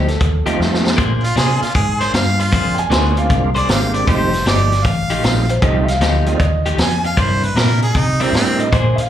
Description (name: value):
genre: electric blues shuffle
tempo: 155 BPM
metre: 4/4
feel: swing 66% on 8ths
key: F mixolydian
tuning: A4 = 439 Hz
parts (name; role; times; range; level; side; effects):
- dark upright piano; second line; 0.0-9.1 s; A3 to Ab5; -22 LUFS; right 2 dB; slapback echo
- electric guitar at the edge of break-up; riff; 0.0-9.0 s; C3 to C5; -22 LUFS; left 4 dB; tremolo, slapback echo
- vintage muted fingered electric bass; bass; 0.0-9.0 s; F1 to C3; -18 LUFS; equal; none
- vintage drum kit; drums; 0.1-9.0 s; hi-hat, kick drum, snare drum; -19 LUFS; equal; none
- bright tonewheel organ; accompaniment; 0.5-8.7 s; G3 to Bb4; -22 LUFS; right 7 dB; slow rotary speaker, overdrive, chorus vibrato, slapback echo
- clear harmonica; melody; 1.2-8.6 s; C4 to Ab5; -20 LUFS; right 2 dB; slapback echo
room: light reverb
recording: live gig heard through the venue's PA, club reverb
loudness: -13 LUFS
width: side -10 dB against mid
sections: 0.0-9.1 A section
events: drum fill 0.6-1.0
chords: 0.0 F9; 1.0 Bb9; 4.1 F9; 7.2 C9